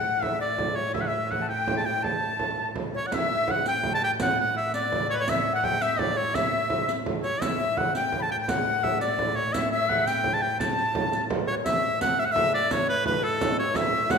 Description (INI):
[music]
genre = medieval dance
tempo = 112 BPM (dotted quarters)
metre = 6/8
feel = straight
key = A mixolydian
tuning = A4 = 440 Hz
[part]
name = bright shawm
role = melody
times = 0.0-14.2 s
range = A4 to A5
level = -26 LUFS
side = right 1 dB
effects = none
[part]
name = mellow tenor recorder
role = second line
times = 0.0-14.2 s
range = A4 to B5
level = -29 LUFS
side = left 6 dB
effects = none
[part]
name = rich viola da gamba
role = drone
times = 0.0-14.2 s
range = A2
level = -36 LUFS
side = right 1 dB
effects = none
[part]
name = frame drum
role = percussion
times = 0.2-14.2 s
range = none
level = -30 LUFS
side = right 3 dB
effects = none
[part]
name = riq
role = percussion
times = 3.1-14.2 s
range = none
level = -35 LUFS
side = right 1 dB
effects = none
[sound]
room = wet scoring stage reverb, RT60 1.8 s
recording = minimal, uncompressed stereo recording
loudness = -23 LUFS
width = side -6 dB against mid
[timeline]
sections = 0.0-3.1 A section; 3.1-11.7 A section; 11.7-14.2 B section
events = speeding up 0.0-14.2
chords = none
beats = 0.41 | 0.95 1.50 | 2.04 2.58 | 3.12 3.66 | 4.20 4.74 | 5.27 5.81 | 6.35 6.88 | 7.42 7.95 | 8.48 9.01 | 9.54 10.07 | 10.60 11.13 | 11.65 12.18 | 12.71 13.23 | 13.75